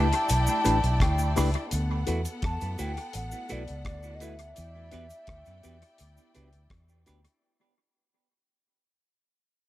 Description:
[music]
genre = lovers rock reggae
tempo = 84 BPM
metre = 4/4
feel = straight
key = E minor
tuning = A4 = 440 Hz
[part]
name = hollow clarinet-like synth lead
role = melody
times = 0.0-6.7 s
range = D5 to A5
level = -33 LUFS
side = equal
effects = chorus, analog delay
[part]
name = warm studio string section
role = second line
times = 0.0-7.4 s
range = B3 to G5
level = -36 LUFS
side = left 2 dB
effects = none
[part]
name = mellow tine electric piano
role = accompaniment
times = 0.0-7.2 s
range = D4 to B4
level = -34 LUFS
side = left 5 dB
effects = medium stereo tremolo
[part]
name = semi-hollow electric guitar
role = stabs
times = 0.0-7.2 s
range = A3 to B4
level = -35 LUFS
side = right 4 dB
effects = phaser, analog delay
[part]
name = vintage muted fingered electric bass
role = bass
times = 0.0-7.2 s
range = A1 to F#2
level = -28 LUFS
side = equal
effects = none
[part]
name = deep reggae drum kit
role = drums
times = 0.1-7.4 s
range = hi-hat, kick drum, rim click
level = -32 LUFS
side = equal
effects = analog delay
[part]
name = cabasa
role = percussion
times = 0.3-7.2 s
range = none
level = -40 LUFS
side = right 2 dB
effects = none
[sound]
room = light reverb, small room ambience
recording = none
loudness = -25 LUFS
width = side -15 dB against mid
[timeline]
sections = 0.0-7.4 A section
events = fade-out 0.0-7.4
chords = 0.0 A9sus4; 1.7 D69; 4.6 Em7

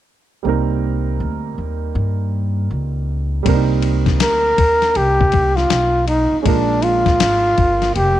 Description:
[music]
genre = hip hop, jazz-hop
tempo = 80 BPM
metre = 4/4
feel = swing 63% on 16ths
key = C minor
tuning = A4 = 440 Hz
[part]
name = dark concert grand piano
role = accompaniment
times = 0.4-8.2 s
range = G3 to Bb4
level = -23 LUFS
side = right 12 dB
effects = none
[part]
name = upright bass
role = bass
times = 0.4-8.2 s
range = F1 to G2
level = -20 LUFS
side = equal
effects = none
[part]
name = dusty soul sampler-style drum kit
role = drums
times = 3.5-8.2 s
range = hi-hat, kick drum, ride cymbal, snare drum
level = -20 LUFS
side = left 4 dB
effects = none
[part]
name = breathy flugelhorn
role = melody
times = 4.2-8.2 s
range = Db4 to Bb4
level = -15 LUFS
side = equal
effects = none
[sound]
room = light reverb, small room ambience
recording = 1960s-style stereo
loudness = -14 LUFS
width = side -12 dB against mid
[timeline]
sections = 0.5-3.5 A section; 3.5-8.2 B section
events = none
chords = 0.5 Cm7; 6.5 Bb7

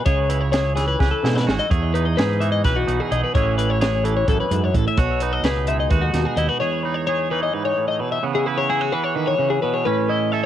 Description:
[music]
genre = math rock and midwest emo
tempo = 258 BPM (eighths)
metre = 7/8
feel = straight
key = unclear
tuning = A4 = 437 Hz
[part]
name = twangy electric guitar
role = accompaniment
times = 0.0-10.5 s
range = E2 to B4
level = -24 LUFS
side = right 8 dB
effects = cassette tape
[part]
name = twelve-string electric guitar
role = arpeggios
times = 0.0-10.5 s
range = F#4 to E5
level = -22 LUFS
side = left 6 dB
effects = cassette tape, analog delay
[part]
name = growling fingered electric bass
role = bass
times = 0.1-6.5 s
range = G#1 to B2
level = -22 LUFS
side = equal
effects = overdrive
[part]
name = compact cocktail drum kit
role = drums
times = 0.1-6.5 s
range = hi-hat, kick drum, snare drum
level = -22 LUFS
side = right 1 dB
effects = cassette tape
[sound]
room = light reverb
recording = home recording on cassette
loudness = -18 LUFS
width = side -11 dB against mid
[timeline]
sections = 0.0-8.2 A section; 8.2-10.5 B section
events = drum fill 1.0-1.7; break 6.6-8.2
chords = 0.1 C#m7; 1.7 Emaj7; 3.3 Amaj7; 5.0 G#m7/B; 6.6 Emaj7; 8.2 C#m7; 9.9 Aadd9

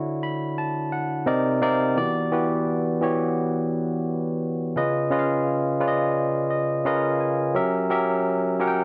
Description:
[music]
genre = R&B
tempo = 86 BPM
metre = 4/4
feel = swing 56% on 16ths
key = unclear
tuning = A4 = 436 Hz
[part]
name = barky tine electric piano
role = solo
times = 0.0-8.8 s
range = C3 to B5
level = -24 LUFS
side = equal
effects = none
[sound]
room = moderate plate reverb, RT60 2.5 s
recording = none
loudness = -24 LUFS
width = mono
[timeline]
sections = 0.0-2.0 A section; 2.0-8.8 B section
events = tine electric piano fill 0.0-2.0, 6.2-7.5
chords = 0.0 Dmaj9; 1.3 Cm7; 2.0 Em9; 4.8 C#9; 6.8 C#13; 7.5 F#7b9

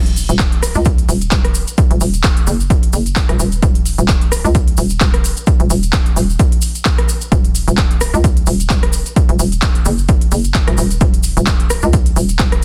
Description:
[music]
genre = bass house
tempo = 130 BPM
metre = 4/4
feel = swing 55% on 16ths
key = Eb minor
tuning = A4 = 440 Hz
[part]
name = hollow knocking FM bass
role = bass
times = 0.0-12.6 s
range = Eb1 to Db2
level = -19 LUFS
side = equal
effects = tube saturation, sidechain pumping
[part]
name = big-room dance drum kit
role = drums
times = 0.1-12.6 s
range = handclaps, hi-hat, rim click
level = -24 LUFS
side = equal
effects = overdrive
[part]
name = tube shaker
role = percussion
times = 0.2-12.5 s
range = none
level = -27 LUFS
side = equal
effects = none
[part]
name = electronic kick drum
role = drums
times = 0.4-12.5 s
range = none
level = -16 LUFS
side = equal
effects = overdrive
[sound]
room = little or no reverb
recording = dense, heavily limited modern master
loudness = -14 LUFS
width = mono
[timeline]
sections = 0.0-12.6 A section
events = none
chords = none

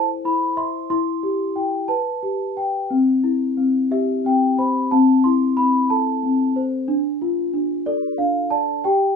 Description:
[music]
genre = children's music, lullaby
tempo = 60 BPM (dotted quarters)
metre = 6/8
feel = rubato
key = C major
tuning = A4 = 440 Hz
[part]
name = celesta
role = solo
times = 0.0-9.2 s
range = C4 to C6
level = -18 LUFS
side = left 2 dB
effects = none
[sound]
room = moderate studio reverb, RT60 0.6 s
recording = band playing live in one room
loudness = -18 LUFS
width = side -6 dB against mid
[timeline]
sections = 0.0-9.2 A section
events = none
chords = 0.0 Am; 0.9 C; 1.9 Gadd9; 2.9 C; 4.9 Am/C; 6.9 Dm

